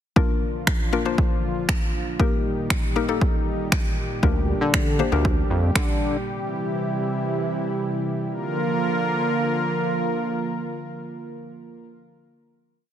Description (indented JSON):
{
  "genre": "dance-pop",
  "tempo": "118 BPM",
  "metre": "4/4",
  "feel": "straight",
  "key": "Bb major",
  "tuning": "A4 = 440 Hz",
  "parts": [
    { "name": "mallet-like synth pluck", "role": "accompaniment", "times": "0.2-5.8 s", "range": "Bb3 to C5", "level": "-26 LUFS", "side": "left 7 dB", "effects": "chorus, sidechain pumping" },
    { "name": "warm analog pad", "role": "sustained chords", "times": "0.2-11.9 s", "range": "Bb2 to Bb4", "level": "-26 LUFS", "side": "right 1 dB", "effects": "chorus, sidechain pumping" },
    { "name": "deep house drum kit", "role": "drums", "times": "0.2-5.9 s", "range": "finger snaps, kick drum", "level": "-22 LUFS", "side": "equal", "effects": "overdrive, soft clipping on snare" },
    { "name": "chorused synth bass", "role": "bass", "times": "4.2-6.2 s", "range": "D2 to D3", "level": "-23 LUFS", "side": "equal", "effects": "sidechain pumping" }
  ],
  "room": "light reverb",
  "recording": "dense, heavily limited modern master",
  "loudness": "-21 LUFS",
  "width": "side -10 dB against mid",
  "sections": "0.2-8.3 verse; 8.3-12.4 final chord",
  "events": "none",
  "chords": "0.2 Bb; 2.2 Eb; 4.2 Gm/D; 6.3 C; 8.3 Bb"
}